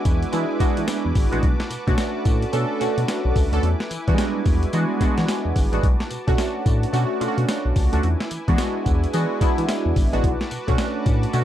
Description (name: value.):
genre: R&B, new jack swing.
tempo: 109 BPM.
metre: 4/4.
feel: swing 62% on 16ths.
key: B dorian.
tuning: A4 = 440 Hz.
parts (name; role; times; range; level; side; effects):
warm analog keys; accompaniment; 0.0-11.4 s; G3 to A4; -24 LUFS; right 1 dB; chorus, phaser.
brassy analog pad; sustained chords; 0.0-11.4 s; E4 to D6; -33 LUFS; equal; chorus.
smooth synth bass; bass; 0.1-11.4 s; G#1 to E3; -23 LUFS; equal; none.
boom bap sampler-style drum kit; drums; 0.1-11.4 s; hi-hat, kick drum, snare drum, tambourine; -22 LUFS; equal; none.
room: little or no reverb.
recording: dark, warm production.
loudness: -19 LUFS.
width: side -11 dB against mid.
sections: 0.0-11.4 A section.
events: none.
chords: 0.0 E7; 1.4 Bm7; 3.6 E7; 5.8 Bm7; 8.0 E7; 10.2 Bm7.